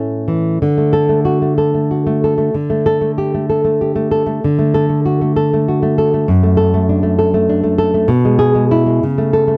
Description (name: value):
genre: romantic piece for solo classical guitar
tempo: 64 BPM (dotted quarters)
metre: 6/8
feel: uneven beats, rubato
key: D major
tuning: A4 = 439 Hz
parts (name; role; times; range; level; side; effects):
- nylon-string guitar; solo; 0.0-9.6 s; F#2 to A4; -15 LUFS; equal; none
room: little or no reverb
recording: dry, close 1970s-style studio recording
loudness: -15 LUFS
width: mono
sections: 0.6-9.6 A section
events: none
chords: 0.0 A; 0.6 D; 2.5 Dsus4; 4.4 D; 6.3 D/F#; 8.1 E/B; 9.0 A/C#